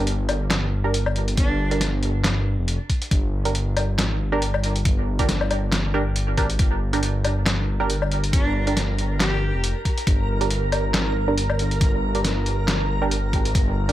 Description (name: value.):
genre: deep dubstep.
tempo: 138 BPM.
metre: 4/4.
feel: swing 56% on 16ths, half-time.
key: G phrygian.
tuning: A4 = 439 Hz.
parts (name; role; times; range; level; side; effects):
filtered dub chord stab; stabs; 0.0-13.9 s; D4 to Bb4; -28 LUFS; right 3 dB; chorus, dub echo.
dark detuned saw bass; bass; 0.0-13.9 s; F1 to Ab1; -23 LUFS; equal; tube saturation.
trip hop sampler-style drum kit; drums; 0.1-13.9 s; handclaps, hi-hat, snare drum, woodblock; -25 LUFS; left 1 dB; none.
rich cello; melody; 1.4-1.7, 8.3-9.5 s; D4 to G4; -30 LUFS; equal; dub echo.
electronic kick drum; drums; 1.4-13.6 s; none; -20 LUFS; equal; overdrive.
backwards swelling texture; texture; 7.7-13.9 s; Bb4; -30 LUFS; right 2 dB; built-in reverb.
room: light reverb, digital ambience.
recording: none.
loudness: -20 LUFS.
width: side -14 dB against mid.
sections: 0.0-13.9 A section.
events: none.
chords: 0.0 Gm.